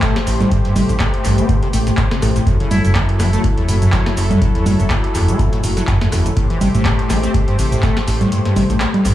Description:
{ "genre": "acid house", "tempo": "123 BPM", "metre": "4/4", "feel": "swing 55% on 16ths", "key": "unclear", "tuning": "A4 = 440 Hz", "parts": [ { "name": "warm analog pad", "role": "sustained chords", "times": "0.0-9.1 s", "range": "F#3 to C5", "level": "-22 LUFS", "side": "left 2 dB", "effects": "chorus, tremolo, sidechain pumping" }, { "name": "acid bass, saw", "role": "riff", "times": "0.0-9.1 s", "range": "E2 to C4", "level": "-19 LUFS", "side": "equal", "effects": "overdrive, analog chorus, tape echo" }, { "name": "booming analog drum machine", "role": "drums", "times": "0.0-9.1 s", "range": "cabasa, congas, handclaps, hi-hat, rim click, snare drum", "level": "-21 LUFS", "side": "right 1 dB", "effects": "tape echo" }, { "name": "electronic kick drum", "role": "drums", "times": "0.0-7.9 s", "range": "none", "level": "-18 LUFS", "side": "equal", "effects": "none" }, { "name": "round analog bass", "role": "bass", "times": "0.3-9.1 s", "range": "F#1 to A1", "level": "-18 LUFS", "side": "equal", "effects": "sidechain pumping" }, { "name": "trumpet with metal mute", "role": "melody", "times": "2.7-2.9 s", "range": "E4", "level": "-30 LUFS", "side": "equal", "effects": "none" } ], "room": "light reverb, digital ambience", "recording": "echo-heavy mix, studio reverb", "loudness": "-13 LUFS", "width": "side -13 dB against mid", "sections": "0.0-9.1 A section", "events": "kick drops out 8.3-9.1", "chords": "0.0 Am7; 2.5 F#m7; 6.4 Am7" }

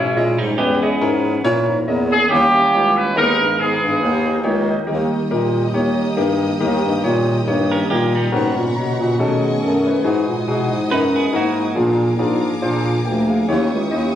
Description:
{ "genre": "gospel", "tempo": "140 BPM", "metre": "4/4", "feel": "swing 55% on 8ths", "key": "G# minor from 8.3 s", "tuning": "A4 = 445 Hz", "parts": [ { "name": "warm horn section", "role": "melody", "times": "0.0-4.5 s", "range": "A#3 to B4", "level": "-16 LUFS", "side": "right 1 dB", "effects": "none" }, { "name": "warm grand piano", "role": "accompaniment", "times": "0.0-14.2 s", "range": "G#2 to A#5", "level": "-21 LUFS", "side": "left 3 dB", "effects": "none" }, { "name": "mellow tonewheel organ", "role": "sustained chords", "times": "0.0-14.2 s", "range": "C#3 to G5", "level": "-24 LUFS", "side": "right 2 dB", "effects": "slow rotary speaker, chorus vibrato" }, { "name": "mellow bass clarinet", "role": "bass", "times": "0.0-14.1 s", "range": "C#2 to B2", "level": "-20 LUFS", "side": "equal", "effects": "none" }, { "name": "clean electric guitar", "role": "second line", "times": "0.4-1.4, 7.7-11.8 s", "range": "G3 to B4", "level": "-23 LUFS", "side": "right 3 dB", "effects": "none" }, { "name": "warm studio string section", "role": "sustained chords", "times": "4.9-14.2 s", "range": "D#5 to D#6", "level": "-30 LUFS", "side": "left 1 dB", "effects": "none" } ], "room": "light reverb", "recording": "recorded on a phone in the room, club reverb, compression", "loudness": "-15 LUFS", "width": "side -10 dB against mid", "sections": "0.0-4.9 A section; 4.9-8.3 B section; 8.3-14.2 C section", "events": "grand piano fill 4.2-4.9", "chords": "0.0 C#m/G#; 1.4 A#dim; 2.3 D#7b9; 3.2 G#m/D#; 4.0 D#; 8.3 G#m11; 9.2 B13; 10.0 Emaj9/G#; 11.8 A#7; 13.5 D#7b9" }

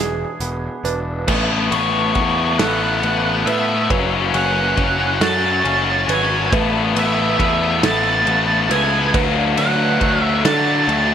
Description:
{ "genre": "post-rock", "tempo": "46 BPM (dotted quarters)", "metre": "6/8", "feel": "straight", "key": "A major", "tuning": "A4 = 440 Hz", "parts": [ { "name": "felt-muted upright piano", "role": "arpeggios", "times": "0.0-11.1 s", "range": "G#4 to B4", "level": "-28 LUFS", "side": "right 9 dB", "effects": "tape echo" }, { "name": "twangy electric guitar", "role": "arpeggios", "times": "0.0-11.1 s", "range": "D3 to B4", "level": "-27 LUFS", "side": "left 1 dB", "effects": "tape echo" }, { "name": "fuzz picked electric bass", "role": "bass", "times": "0.0-11.1 s", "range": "E1 to D3", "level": "-22 LUFS", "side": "equal", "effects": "overdrive" }, { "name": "loose indie drum kit", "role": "drums", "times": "0.4-11.1 s", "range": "crash cymbal, hi-hat, kick drum, ride cymbal, snare drum", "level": "-23 LUFS", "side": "equal", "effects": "none" }, { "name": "tight distorted guitar", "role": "riff", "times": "1.3-11.1 s", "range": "D3 to C#4", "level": "-20 LUFS", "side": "left 7 dB", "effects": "distortion" }, { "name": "octave-fuzz lead guitar", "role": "melody", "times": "1.7-11.1 s", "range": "C#5 to A5", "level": "-20 LUFS", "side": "right 4 dB", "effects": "distortion, tape echo" } ], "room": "light reverb, studio reverb", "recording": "none", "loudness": "-15 LUFS", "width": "side -8 dB against mid", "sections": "0.0-1.3 A section; 1.3-11.1 B section", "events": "build-up 1.3-11.1", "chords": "0.0 E7; 1.3 Aadd9; 3.9 F#m; 6.5 Aadd9; 9.1 D" }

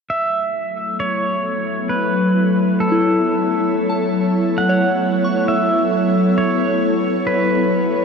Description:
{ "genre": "ambient", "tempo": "67 BPM", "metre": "3/4", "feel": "straight", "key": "unclear", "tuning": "A4 = 441 Hz", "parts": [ { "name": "pedal steel guitar", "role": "melody", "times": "0.1-8.0 s", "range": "A4 to F#5", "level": "-20 LUFS", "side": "right 1 dB", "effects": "diffuse ambient delay" }, { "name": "ethereal airy pad", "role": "sustained chords", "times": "0.9-8.0 s", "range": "F#3 to C#5", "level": "-18 LUFS", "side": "equal", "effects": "ensemble chorus, built-in reverb" }, { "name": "organ-like drone", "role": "drone", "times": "0.5-8.0 s", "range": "A3 to E4", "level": "-27 LUFS", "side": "left 4 dB", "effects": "ensemble chorus, built-in reverb" }, { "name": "soft synth bell", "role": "arpeggios", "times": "2.9-8.0 s", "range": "E4 to C#6", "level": "-23 LUFS", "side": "left 2 dB", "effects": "chorus, diffuse ambient delay" } ], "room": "wet cathedral reverb, RT60 5.2 s", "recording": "dark, warm production", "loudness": "-15 LUFS", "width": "side -5 dB against mid", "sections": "0.1-8.0 A section", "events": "fade-out on synth drone 0.1-8.0", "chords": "0.1 F#m7" }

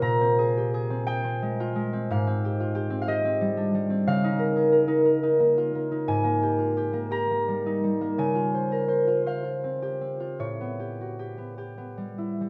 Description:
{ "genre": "classical, solo harp piece", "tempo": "46-63 BPM (dotted quarters)", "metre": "6/8", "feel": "rubato", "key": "unclear", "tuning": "A4 = 445 Hz", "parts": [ { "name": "concert harp", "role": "solo", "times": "0.0-12.5 s", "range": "Ab2 to Bb5", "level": "-26 LUFS", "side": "equal", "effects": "none" } ], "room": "light reverb", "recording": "none", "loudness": "-25 LUFS", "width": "mono", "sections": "0.0-12.5 A section", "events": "none", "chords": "0.0 Bb9sus4; 2.1 Abmaj7#11; 4.1 Db69; 6.1 Absus2; 8.2 Dbmaj7#11; 10.4 A9" }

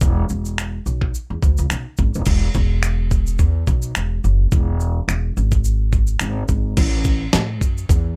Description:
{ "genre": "acoustic pop", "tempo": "107 BPM", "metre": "4/4", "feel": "swing 55% on 16ths", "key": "unclear", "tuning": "A4 = 440 Hz", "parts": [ { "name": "upright bass", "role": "bass", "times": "0.0-8.1 s", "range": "E1 to A2", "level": "-21 LUFS", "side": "equal", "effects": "none" }, { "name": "dusty soul sampler-style drum kit", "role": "drums", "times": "0.0-8.0 s", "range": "crash cymbal, finger snaps, kick drum, shaker, snare drum", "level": "-22 LUFS", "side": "equal", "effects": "none" } ], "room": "little or no reverb", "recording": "none", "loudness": "-19 LUFS", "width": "mono", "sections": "0.0-2.3 A section; 2.3-6.8 B section; 6.8-8.2 C section", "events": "none", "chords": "none" }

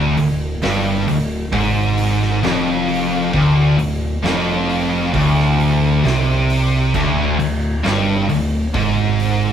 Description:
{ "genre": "stoner and doom metal", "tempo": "66 BPM", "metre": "4/4", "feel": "straight", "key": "unclear", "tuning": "A4 = 440 Hz", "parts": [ { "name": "thick fuzz guitar", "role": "riff", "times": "0.0-9.5 s", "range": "D2 to C3", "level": "-20 LUFS", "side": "left 6 dB", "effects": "distortion" }, { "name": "thick fuzz guitar", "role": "riff", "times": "0.0-9.5 s", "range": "D2 to C3", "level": "-19 LUFS", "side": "right 5 dB", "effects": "distortion" }, { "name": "tight distorted guitar", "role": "riff", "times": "0.0-9.5 s", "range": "D2 to C3", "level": "-22 LUFS", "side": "equal", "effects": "distortion" }, { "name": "growling picked electric bass", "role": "bass", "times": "0.0-9.5 s", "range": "D1 to C2", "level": "-24 LUFS", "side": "equal", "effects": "overdrive" }, { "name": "oversized low-tuned drum kit", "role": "drums", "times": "0.2-9.4 s", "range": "crash cymbal, hi-hat, kick drum, snare drum", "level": "-25 LUFS", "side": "equal", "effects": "none" } ], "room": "moderate stone room reverb, RT60 1.1 s", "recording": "rough rehearsal-room recording", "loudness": "-15 LUFS", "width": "side -9 dB against mid", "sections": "0.0-9.5 A section", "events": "none", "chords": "0.0 Dm" }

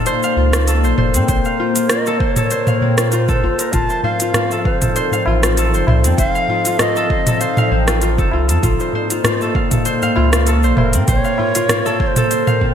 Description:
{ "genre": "organic downtempo", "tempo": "98 BPM", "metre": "4/4", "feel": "swing 54% on 16ths", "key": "unclear", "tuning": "A4 = 440 Hz", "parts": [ { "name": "warbly tape-like pad", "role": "sustained chords", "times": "0.0-12.7 s", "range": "Bb2 to A5", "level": "-22 LUFS", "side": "equal", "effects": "chorus, built-in reverb, vintage 12-bit sampler grit, sidechain pumping" }, { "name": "concert harp", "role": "arpeggios", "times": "0.0-12.7 s", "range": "C4 to F5", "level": "-20 LUFS", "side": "left 2 dB", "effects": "ping-pong delay" }, { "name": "organic electronic drum kit", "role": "drums", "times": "0.1-12.6 s", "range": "hi-hat, rim click, shaker, toms", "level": "-19 LUFS", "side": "right 1 dB", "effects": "overdrive, gated reverb" }, { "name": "warm sub bass", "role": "bass", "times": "0.4-12.7 s", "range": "F1 to Bb2", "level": "-16 LUFS", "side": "equal", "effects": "sidechain pumping" }, { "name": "breathy low ney", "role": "melody", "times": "1.3-12.7 s", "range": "Bb4 to A5", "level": "-22 LUFS", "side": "right 1 dB", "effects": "ping-pong delay" }, { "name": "electronic kick drum", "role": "drums", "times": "1.3-12.7 s", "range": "none", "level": "-19 LUFS", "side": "equal", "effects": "none" }, { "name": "tabla", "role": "percussion", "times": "3.9-12.3 s", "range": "none", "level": "-26 LUFS", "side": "left 3 dB", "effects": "none" } ], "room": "moderate lush hall reverb, RT60 1.9 s, digital ambience", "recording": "bright 1980s-style digital production", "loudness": "-13 LUFS", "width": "side -8 dB against mid", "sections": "0.0-12.7 A section", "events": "none", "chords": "0.0 Bbmadd9; 3.7 F7; 8.6 Bbmadd9" }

